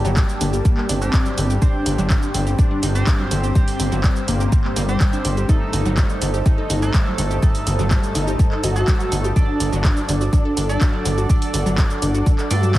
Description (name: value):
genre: melodic techno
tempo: 124 BPM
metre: 4/4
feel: straight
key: unclear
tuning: A4 = 440 Hz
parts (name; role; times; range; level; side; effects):
- deep dark ambient pad; sustained chords; 0.0-12.8 s; Bb3 to Eb6; -33 LUFS; right 2 dB; chorus, built-in reverb, sidechain pumping
- wide unison pluck; arpeggios; 0.0-12.8 s; D3 to A4; -28 LUFS; equal; sidechain pumping, dub echo
- sync-sweep polysynth; stabs; 0.0-12.8 s; G3 to D5; -29 LUFS; right 3 dB; chorus, sidechain pumping, dub echo
- gritty driven synth bass; bass; 0.0-12.8 s; G1 to G2; -21 LUFS; equal; sidechain pumping
- overtone-sweeping drone; drone; 0.0-12.8 s; G2; -31 LUFS; equal; none
- punchy analog drum machine; drums; 0.0-12.8 s; handclaps, hi-hat, shaker; -27 LUFS; right 1 dB; none
- ethereal airy pad; texture; 0.0-12.8 s; C4 to D6; -31 LUFS; left 1 dB; ensemble chorus, built-in reverb, sidechain pumping
- electronic kick drum; drums; 0.2-12.8 s; none; -17 LUFS; equal; none
- fat analog lead; melody; 0.4-12.8 s; G3 to F#4; -27 LUFS; equal; ensemble chorus, sidechain pumping, tape echo
room: little or no reverb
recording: heavily compressed radio sound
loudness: -16 LUFS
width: side -15 dB against mid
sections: 0.0-12.8 A section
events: none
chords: 0.0 Gm; 1.6 Csus2/G; 5.5 Adim/G; 9.4 D/G